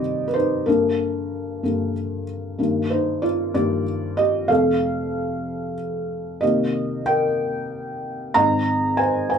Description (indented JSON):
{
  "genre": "pop",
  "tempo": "62 BPM (dotted quarters)",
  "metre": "6/8",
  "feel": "straight",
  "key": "unclear",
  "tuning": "A4 = 436 Hz",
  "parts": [
    { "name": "felt-muted upright piano", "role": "solo", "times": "0.0-9.4 s", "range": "F2 to Bb5", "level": "-20 LUFS", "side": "equal", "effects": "none" }
  ],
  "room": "wet small room reverb, RT60 0.5 s",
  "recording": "band playing live in one room",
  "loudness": "-20 LUFS",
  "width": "side -7 dB against mid",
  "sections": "0.0-9.4 A section",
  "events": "felt piano solo 0.0-9.4",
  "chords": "0.0 Cm; 0.7 Gm; 2.6 Ebmaj13/G; 4.5 F; 6.4 Cm7; 8.3 Ab"
}